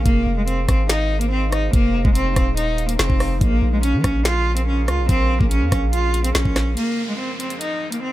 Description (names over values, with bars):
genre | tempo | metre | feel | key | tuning
hip hop, drill | 143 BPM | 4/4 | half-time | F minor | A4 = 440 Hz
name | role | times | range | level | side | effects
clear cello | melody | 0.0-8.1 s | Ab3 to F4 | -22 LUFS | equal | none
deep dark ambient pad | sustained chords | 0.0-8.1 s | F2 to F5 | -30 LUFS | right 2 dB | chorus, built-in reverb
long sustained 808-style bass | bass | 0.0-6.8 s | Eb1 to F3 | -21 LUFS | equal | none
drill drum kit | drums | 0.1-8.0 s | finger snaps, hi-hat, kick drum, rim click, snare drum | -20 LUFS | equal | none
downlifter | sound effects | 6.8-8.1 s | none | -32 LUFS | equal | none
room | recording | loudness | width
little or no reverb | none | -17 LUFS | side -15 dB against mid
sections
0.0-6.8 A section; 6.8-8.1 B section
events
none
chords
0.1 Fm7; 3.4 Bbm7; 6.8 Fm7